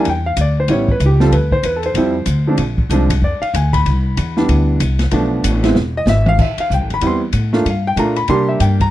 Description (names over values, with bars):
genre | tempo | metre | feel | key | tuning
jazz, small-group swing and bop | 190 BPM | 4/4 | swing 61% on 8ths | unclear | A4 = 439 Hz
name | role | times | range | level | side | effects
clear concert grand piano | accompaniment | 0.0-8.9 s | E3 to C6 | -17 LUFS | equal | none
upright bass | bass | 0.1-8.9 s | E1 to C3 | -16 LUFS | equal | none
open jazz drum kit | drums | 0.1-8.9 s | crash cymbal, hi-hat, kick drum, ride cymbal, snare drum, toms | -22 LUFS | equal | none
room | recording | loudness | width
little or no reverb | dry, close 1970s-style studio recording | -13 LUFS | side -14 dB against mid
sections
0.0-6.4 A section; 6.4-8.9 A section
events
drum fill 5.8-6.4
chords
0.1 Dm11; 0.7 A7; 1.3 Dm11; 2.6 Bb9; 3.9 Cmaj9; 5.1 Bm7b5; 5.8 E; 6.4 Am7; 7.7 Gm7; 8.3 Csus2